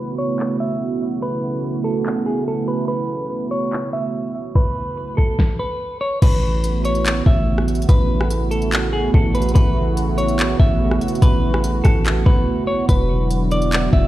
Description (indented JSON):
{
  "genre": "hip hop, atmospheric cloud-rap",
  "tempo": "144 BPM",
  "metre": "4/4",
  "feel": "half-time",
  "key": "A major",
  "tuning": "A4 = 442 Hz",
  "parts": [
    { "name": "semi-hollow electric guitar", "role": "melody", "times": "0.0-14.1 s", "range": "G#4 to E5", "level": "-24 LUFS", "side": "equal", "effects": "digital delay" },
    { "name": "dark analog pad", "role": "sustained chords", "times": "0.0-14.1 s", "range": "C#3 to F#4", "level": "-22 LUFS", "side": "right 3 dB", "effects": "chorus, sidechain pumping" },
    { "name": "smooth R&B drum kit", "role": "drums", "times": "0.4-14.0 s", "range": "crash cymbal, handclaps, hi-hat, kick drum, rim click, snare drum", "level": "-17 LUFS", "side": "equal", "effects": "none" },
    { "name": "warm 808-style bass", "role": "bass", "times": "6.2-14.1 s", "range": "E1 to A1", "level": "-19 LUFS", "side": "equal", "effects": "none" }
  ],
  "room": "digital ambience",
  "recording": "played on a big sound system in a bare room, stone room reverb, low-pass filter",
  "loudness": "-16 LUFS",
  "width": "side -15 dB against mid",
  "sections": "0.0-6.2 A section; 6.2-14.1 B section",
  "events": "filter sweep 0.0-6.2; break 12.5-12.9",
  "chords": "0.0 A69; 12.9 E7sus2"
}